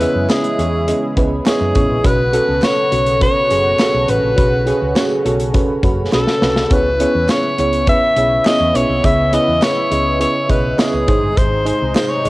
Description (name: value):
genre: 1980s-style pop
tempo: 103 BPM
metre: 4/4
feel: straight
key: unclear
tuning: A4 = 442 Hz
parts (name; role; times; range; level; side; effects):
- bright alto saxophone; melody; 0.0-12.3 s; G#4 to E5; -17 LUFS; left 1 dB; tape echo
- mellow FM electric piano; accompaniment; 0.0-12.3 s; G#2 to E5; -18 LUFS; right 1 dB; chorus, cassette tape
- warm analog pad; sustained chords; 0.0-12.3 s; B#2 to F#4; -26 LUFS; right 1 dB; chorus, cassette tape
- hollow-body short-scale fingered electric bass; bass; 0.0-12.3 s; F#1 to F#2; -21 LUFS; equal; none
- modern studio drum kit; drums; 0.0-12.3 s; hi-hat, kick drum, snare drum, tambourine; -18 LUFS; equal; cassette tape
- group handclap; percussion; 0.3-12.1 s; none; -36 LUFS; right 4 dB; none
room: light reverb, small room ambience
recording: home recording on cassette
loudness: -13 LUFS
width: side -19 dB against mid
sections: 0.0-12.3 A section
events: drum fill 6.1-6.7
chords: 0.0 E6; 2.0 Bsus2; 6.7 C#m7; 11.1 G#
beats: 0.30 0.88 1.46 | 2.05 2.63 3.21 3.79 | 4.38 4.96 5.54 6.12 | 6.71 7.29 7.87 8.46 | 9.04 9.62 10.20 10.79 | 11.37 11.95